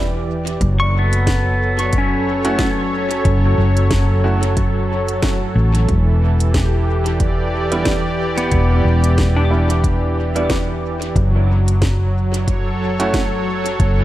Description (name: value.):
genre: ambient dub.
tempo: 91 BPM.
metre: 4/4.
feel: swing 58% on 16ths.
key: unclear.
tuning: A4 = 440 Hz.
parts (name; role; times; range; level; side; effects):
warm analog pad; sustained chords; 0.0-14.0 s; E3 to D5; -21 LUFS; right 1 dB; chorus, tremolo.
hollow-body short-scale fingered electric bass; bass; 0.0-14.0 s; E1 to A1; -17 LUFS; equal; none.
organic electronic drum kit; drums; 0.5-13.9 s; hi-hat, snare drum; -26 LUFS; equal; dub echo.
electronic kick drum; drums; 0.6-13.9 s; none; -21 LUFS; equal; overdrive.
pedal steel guitar; arpeggios; 0.8-11.3 s; B3 to D6; -24 LUFS; left 1 dB; dub echo.
clear upright piano; stabs; 2.4-13.2 s; G3 to F#4; -27 LUFS; right 2 dB; vintage 12-bit sampler grit, dub echo.
room: light reverb, digital ambience.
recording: none.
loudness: -14 LUFS.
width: side -14 dB against mid.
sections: 0.0-14.0 A section.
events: none.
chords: 0.0 Em7; 0.6 F#m; 5.9 Em7; 11.2 F#m.